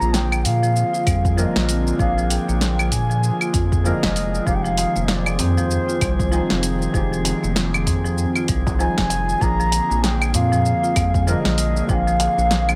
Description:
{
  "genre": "organic downtempo",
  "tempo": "97 BPM",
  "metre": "4/4",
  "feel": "swing 59% on 16ths",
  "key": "unclear",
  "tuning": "A4 = 438 Hz",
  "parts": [
    { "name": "mellow bansuri", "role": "melody", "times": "0.0-12.8 s", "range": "C5 to Bb5", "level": "-26 LUFS", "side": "equal", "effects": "tape echo" },
    { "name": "felt-muted upright piano", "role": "accompaniment", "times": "0.0-12.8 s", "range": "D3 to Ab5", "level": "-32 LUFS", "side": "equal", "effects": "sidechain pumping, delay" },
    { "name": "airy breathy pad", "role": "sustained chords", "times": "0.0-12.8 s", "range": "D3 to F4", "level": "-32 LUFS", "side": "equal", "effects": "none" },
    { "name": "marimba with medium mallets", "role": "arpeggios", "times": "0.0-12.8 s", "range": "F3 to F4", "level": "-28 LUFS", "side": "equal", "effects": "none" },
    { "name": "round analog bass", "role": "bass", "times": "0.0-12.8 s", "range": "F1 to Bb2", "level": "-24 LUFS", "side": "equal", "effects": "tube saturation" },
    { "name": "deep house drum kit", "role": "drums", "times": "0.0-12.8 s", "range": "claves, hi-hat, shaker, snare drum", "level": "-26 LUFS", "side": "equal", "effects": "overdrive" },
    { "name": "drifting glass-harmonics texture", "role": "texture", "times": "0.0-12.8 s", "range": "Ab4", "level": "-36 LUFS", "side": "equal", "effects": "chorus, built-in reverb" },
    { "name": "electronic kick drum", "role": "drums", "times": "1.1-12.0 s", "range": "none", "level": "-26 LUFS", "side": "equal", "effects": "overdrive" },
    { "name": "darbuka", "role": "percussion", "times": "4.8-12.8 s", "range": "none", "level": "-32 LUFS", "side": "equal", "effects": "none" }
  ],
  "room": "moderate recital hall reverb, RT60 1.5 s, studio reverb",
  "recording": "none",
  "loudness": "-20 LUFS",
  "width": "mono",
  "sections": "0.0-12.8 A section",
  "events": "none",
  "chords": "0.0 Bb7; 4.5 Fm7; 9.4 Bb7"
}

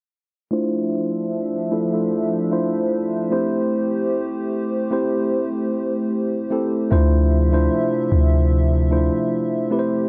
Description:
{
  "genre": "contemporary R&B",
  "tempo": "75 BPM",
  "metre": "4/4",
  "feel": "swing 54% on 16ths",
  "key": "D minor",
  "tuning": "A4 = 439 Hz",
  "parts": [
    { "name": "mellow tine electric piano", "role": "accompaniment", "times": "0.5-10.1 s", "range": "A3 to C5", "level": "-23 LUFS", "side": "equal", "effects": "low-pass filter" },
    { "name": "hollow soft pad", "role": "sustained chords", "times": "0.8-10.1 s", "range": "C3 to E5", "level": "-29 LUFS", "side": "equal", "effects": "chorus, low-pass filter" },
    { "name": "clean 808-style bass", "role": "bass", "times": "6.9-9.1 s", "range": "D2", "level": "-19 LUFS", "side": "equal", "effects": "none" }
  ],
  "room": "digital ambience",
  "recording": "dry, gritty hardware recording",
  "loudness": "-21 LUFS",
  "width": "mono",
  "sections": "0.5-6.9 A section; 6.9-10.1 B section",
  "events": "filter sweep 0.5-6.9",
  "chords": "0.5 Dm9; 3.3 Am7; 6.9 Dm9"
}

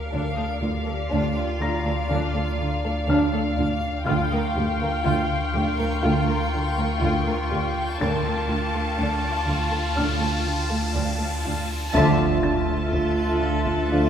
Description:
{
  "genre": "cinematic, suspense film score",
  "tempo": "61 BPM",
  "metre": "4/4",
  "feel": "straight",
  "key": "D minor",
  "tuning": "A4 = 439 Hz",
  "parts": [
    { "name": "rich studio violin section", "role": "melody", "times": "0.0-14.1 s", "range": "F5 to A5", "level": "-30 LUFS", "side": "left 2 dB", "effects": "none" },
    { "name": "dark studio violin section", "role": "second line", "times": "0.0-14.1 s", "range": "D4 to F5", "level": "-29 LUFS", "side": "left 1 dB", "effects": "none" },
    { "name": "backwards swelling texture", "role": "sustained chords", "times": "0.0-14.1 s", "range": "F4 to A5", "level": "-33 LUFS", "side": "equal", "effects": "built-in reverb" },
    { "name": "saturated sub bass", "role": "drone", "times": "0.0-14.1 s", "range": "D2", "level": "-29 LUFS", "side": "right 1 dB", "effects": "none" },
    { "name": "impact and riser", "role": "sound effects", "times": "7.2-14.1 s", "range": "none", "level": "-35 LUFS", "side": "equal", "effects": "none" },
    { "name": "felt-muted upright piano", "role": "texture", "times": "0.0-14.1 s", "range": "Bb4 to Bb6", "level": "-35 LUFS", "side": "left 3 dB", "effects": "none" },
    { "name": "warm studio cello section", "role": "riff", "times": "0.1-14.1 s", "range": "D3 to D4", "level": "-29 LUFS", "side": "equal", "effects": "none" },
    { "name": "dark studio double bass section", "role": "bass", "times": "0.1-14.1 s", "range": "D2", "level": "-32 LUFS", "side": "right 3 dB", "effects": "none" },
    { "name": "warm studio cello section", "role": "bass", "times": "0.1-14.1 s", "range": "D2", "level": "-30 LUFS", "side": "right 1 dB", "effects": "none" },
    { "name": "solo taiko drums", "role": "drums", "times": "4.1-6.0, 11.9-14.1 s", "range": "none", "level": "-32 LUFS", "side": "equal", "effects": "none" },
    { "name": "dark studio violin section", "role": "texture", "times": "4.1-14.1 s", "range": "G5 to F#6", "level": "-36 LUFS", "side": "left 4 dB", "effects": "none" },
    { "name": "warm studio viola section", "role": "accompaniment", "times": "11.9-14.1 s", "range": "F4", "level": "-27 LUFS", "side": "right 2 dB", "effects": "none" },
    { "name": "warm French horn section", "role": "sustained chords", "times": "11.9-14.1 s", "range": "A3 to F4", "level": "-30 LUFS", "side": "left 2 dB", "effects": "none" },
    { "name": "warm trombone section", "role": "sustained chords", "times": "11.9-14.1 s", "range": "D3 to F3", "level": "-29 LUFS", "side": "right 3 dB", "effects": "none" }
  ],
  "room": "wet scoring stage reverb, RT60 1.8 s",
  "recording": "heard from further back in the room",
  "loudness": "-21 LUFS",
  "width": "side -8 dB against mid",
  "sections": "0.0-11.9 A section; 11.9-14.1 B section",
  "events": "riser 7.2-11.9; band accent 11.9-12.9; impact 11.9-14.1",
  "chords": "0.1 Dm; 4.1 Gm7/D; 8.0 Dm; 11.9 Dmadd9"
}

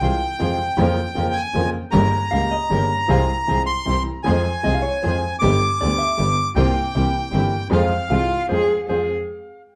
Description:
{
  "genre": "tango",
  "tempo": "155 BPM",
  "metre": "3/4",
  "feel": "rubato",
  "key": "F minor",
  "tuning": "A4 = 442 Hz",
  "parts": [
    { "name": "bandoneon", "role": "melody", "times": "0.0-8.5 s", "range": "F5 to D6", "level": "-25 LUFS", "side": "equal", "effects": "analog delay" },
    { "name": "clear upright piano", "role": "accompaniment", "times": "0.0-9.1 s", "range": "G1 to Ab4", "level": "-26 LUFS", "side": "equal", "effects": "none" },
    { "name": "clear studio string section", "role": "stabs", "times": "0.0-9.1 s", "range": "Ab3 to Bb4", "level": "-36 LUFS", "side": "equal", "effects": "none" },
    { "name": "clear double bass", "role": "bass", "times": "0.0-9.0 s", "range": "G1 to F2", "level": "-24 LUFS", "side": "equal", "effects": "none" },
    { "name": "hollow-body jazz guitar", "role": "second line", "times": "2.3-9.1 s", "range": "C5 to F5", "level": "-30 LUFS", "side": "equal", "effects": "none" },
    { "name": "warm cello", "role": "second line", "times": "8.1-9.1 s", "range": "F4 to Ab4", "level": "-24 LUFS", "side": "equal", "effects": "none" }
  ],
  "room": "wet club reverb, RT60 0.5 s",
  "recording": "heard from further back in the room",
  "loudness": "-20 LUFS",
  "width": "mono",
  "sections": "0.0-8.9 A section",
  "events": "none",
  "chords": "0.0 Fm; 0.8 Bbm/F; 1.9 Gdim; 3.1 Fm/C; 3.9 C; 4.3 Fm; 5.4 G; 6.6 C7sus4; 6.9 C7; 7.7 Fm"
}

